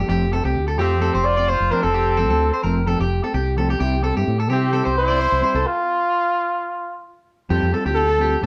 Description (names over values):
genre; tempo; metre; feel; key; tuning
highlife; 129 BPM; 4/4; swing 53% on 16ths; F major; A4 = 439 Hz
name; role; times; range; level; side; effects
electric guitar at the edge of break-up; arpeggios; 0.0-8.5 s; G4 to D5; -26 LUFS; equal; slapback echo
fingered electric bass; bass; 0.0-8.5 s; F1 to C3; -24 LUFS; equal; none
mellow electric guitar; accompaniment; 0.1-8.5 s; F3 to A4; -28 LUFS; equal; none
trumpet with bucket mute; melody; 0.8-8.4 s; F4 to D5; -23 LUFS; equal; slapback echo
bright trumpet; second line; 0.8-5.6 s; C4 to F4; -30 LUFS; equal; none
room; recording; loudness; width
moderate spring reverb, RT60 1.4 s; none; -20 LUFS; mono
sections
0.0-7.5 A section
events
stop 5.7-7.5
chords
0.0 Fadd9; 3.8 C; 5.7 N.C.; 7.5 Fadd9